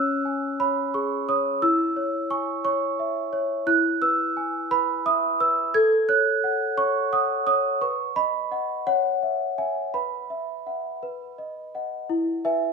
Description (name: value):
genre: classical, lullaby for celesta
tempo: 58 BPM (dotted quarters)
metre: 6/8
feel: rubato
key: C# minor, E major from 3.7 s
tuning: A4 = 440 Hz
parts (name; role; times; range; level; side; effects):
- large celesta; solo; 0.0-12.7 s; C#4 to G#6; -22 LUFS; right 1 dB; none
room: wet recital hall reverb, RT60 1.4 s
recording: minimal, uncompressed stereo recording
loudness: -22 LUFS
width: side -4 dB against mid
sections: 0.0-12.1 A section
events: none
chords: 0.0 C#m; 1.6 C#m/E; 3.7 E; 5.7 F#m/A; 7.8 B; 8.9 C#m; 9.9 Bsus4; 11.0 B; 12.1 E